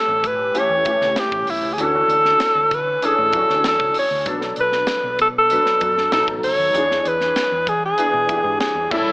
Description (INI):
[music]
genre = polished 1980s jazz-funk pop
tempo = 97 BPM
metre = 4/4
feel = straight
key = unclear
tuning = A4 = 441 Hz
[part]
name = breathy alto saxophone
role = melody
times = 0.0-9.1 s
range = E4 to C#5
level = -17 LUFS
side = equal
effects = none
[part]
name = warm grand piano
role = accompaniment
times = 0.0-9.1 s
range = E3 to B4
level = -25 LUFS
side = left 1 dB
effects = ensemble chorus
[part]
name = hollow-body short-scale fingered electric bass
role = bass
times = 0.1-9.1 s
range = G1 to E3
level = -35 LUFS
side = equal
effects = none
[part]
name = crisp fusion drum kit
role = drums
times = 0.2-9.1 s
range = crash cymbal, hi-hat, kick drum, snare drum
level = -27 LUFS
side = equal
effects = none
[sound]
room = light reverb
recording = AM radio sound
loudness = -16 LUFS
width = side -25 dB against mid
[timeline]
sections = 0.0-9.1 A section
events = none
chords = 0.0 A7; 1.8 Dmaj9; 4.3 Bm7; 6.1 B7; 6.7 E7